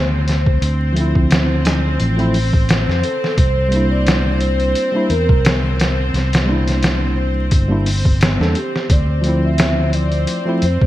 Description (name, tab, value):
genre	trip hop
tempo	87 BPM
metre	4/4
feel	swing 55% on 16ths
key	D minor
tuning	A4 = 440 Hz
part	pure breathy sine lead	melody	0.0-10.9 s	G4 to E5	-23 LUFS	right 1 dB	analog chorus, tape echo
part	rich chamber string section	sustained chords	0.0-10.9 s	C4 to C5	-24 LUFS	left 2 dB	none
part	fingered electric bass	bass	0.0-10.9 s	G1 to F2	-17 LUFS	equal	none
part	trip hop sampler-style drum kit	drums	0.3-10.9 s	hi-hat, kick drum, snare drum	-17 LUFS	equal	gated reverb
part	tine electric piano	accompaniment	0.9-10.7 s	F3 to A4	-21 LUFS	equal	harmonic tremolo, tape echo
room	light reverb, digital ambience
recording	bright 1980s-style digital production, vinyl crackle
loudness	-14 LUFS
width	side -14 dB against mid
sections	0.0-10.9 A section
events	none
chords	0.0 Dm7; 3.4 C7; 8.9 Dm7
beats	| 0.62 1.31 2.00 2.69 | 3.38 4.07 4.76 5.45 | 6.14 6.83 7.52 8.21 | 8.90 9.59 10.28